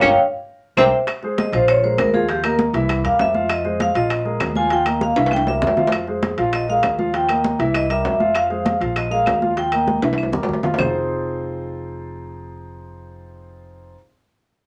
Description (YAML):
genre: Afro-Cuban jazz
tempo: 198 BPM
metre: 4/4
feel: straight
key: F minor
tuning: A4 = 441 Hz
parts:
  - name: vibraphone with medium hard mallets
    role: melody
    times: 0.0-10.0 s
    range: G4 to Ab5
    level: -21 LUFS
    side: equal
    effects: none
  - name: breathy tenor saxophone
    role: second line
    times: 0.0-0.8 s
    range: C4 to Db4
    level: -20 LUFS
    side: equal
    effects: none
  - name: warm concert grand piano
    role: accompaniment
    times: 0.0-13.9 s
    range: E3 to F5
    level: -26 LUFS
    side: equal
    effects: none
  - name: upright bass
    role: bass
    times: 0.0-13.9 s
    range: F1 to F2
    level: -30 LUFS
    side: equal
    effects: none
  - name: bongos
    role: percussion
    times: 0.0-10.9 s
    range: none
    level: -34 LUFS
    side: equal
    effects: none
  - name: claves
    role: percussion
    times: 0.0-10.9 s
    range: none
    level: -30 LUFS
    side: equal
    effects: none
  - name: congas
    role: percussion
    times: 0.0-10.9 s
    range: none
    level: -29 LUFS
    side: equal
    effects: none
  - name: timbales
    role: percussion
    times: 0.0-10.9 s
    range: none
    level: -29 LUFS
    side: equal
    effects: none
room: wet club reverb, RT60 0.5 s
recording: none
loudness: -19 LUFS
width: mono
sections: 0.0-1.1 A section; 1.1-10.8 B section; 10.8-13.2 C section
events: band accent 0.0-1.1; drum fill 0.6-1.1, 5.2-5.9, 9.9-10.8; vibraphone solo 1.1-10.8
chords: 0.5 C7(no3); 1.1 Fm; 1.7 Bb5; 2.3 Ebsus2; 2.9 C7; 3.5 Fm7; 4.1 Bb5; 4.7 Ebadd9; 5.3 C7; 5.9 Fm; 6.5 Bb5; 7.1 Ebadd9; 7.7 C7; 8.3 Fm; 9.0 Bb5; 9.6 Ebadd9; 10.2 C7; 10.8 Fm7